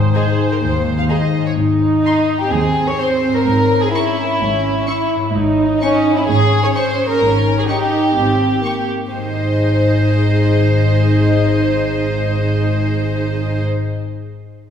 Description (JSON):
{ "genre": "cinematic, playful, whimsical film cue", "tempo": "127 BPM", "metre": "4/4", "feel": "straight", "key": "Ab major", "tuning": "A4 = 440 Hz", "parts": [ { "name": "glockenspiel with soft plastic mallets", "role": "melody", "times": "0.0-1.3 s", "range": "Ab5", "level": "-35 LUFS", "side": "equal", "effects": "none" }, { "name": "dark studio viola section", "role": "accompaniment", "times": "0.0-13.6 s", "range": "Bb3 to C5", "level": "-20 LUFS", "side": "right 3 dB", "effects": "none" }, { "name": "concert harp", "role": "arpeggios", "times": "0.0-14.0 s", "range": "Ab2 to Eb5", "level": "-23 LUFS", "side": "left 5 dB", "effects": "none" }, { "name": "dark studio cello section", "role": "bass", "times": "0.0-13.6 s", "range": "Eb2 to Ab2", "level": "-21 LUFS", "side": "equal", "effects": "none" }, { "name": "rich studio double bass section", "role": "bass", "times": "0.0-13.7 s", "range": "Ab1 to Eb2", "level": "-22 LUFS", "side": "equal", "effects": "none" }, { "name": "warm studio violin section", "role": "melody", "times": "0.1-13.7 s", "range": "Ab4 to Db6", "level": "-28 LUFS", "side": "left 3 dB", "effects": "none" }, { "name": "warm studio violin section", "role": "second line", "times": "0.1-13.6 s", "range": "Db4 to Db5", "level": "-18 LUFS", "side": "left 1 dB", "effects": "none" } ], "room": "wet scoring stage reverb, RT60 2.2 s", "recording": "heard from further back in the room", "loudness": "-14 LUFS", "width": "side -8 dB against mid", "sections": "0.0-1.6 A section; 1.6-9.1 B section; 9.1-12.9 C section", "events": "none", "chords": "0.0 Ab; 3.5 Dbm/Ab; 7.2 Eb7/Ab; 9.1 Ab", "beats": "0.14 0.62 1.10 | 1.58 2.05 2.52 2.99 | 3.46 3.94 4.41 4.88 | 5.34 5.81 6.28 6.75 | 7.22 7.69 8.16 8.64 | 9.11 9.59 10.06 10.53 | 11.00 11.47 11.94 12.42" }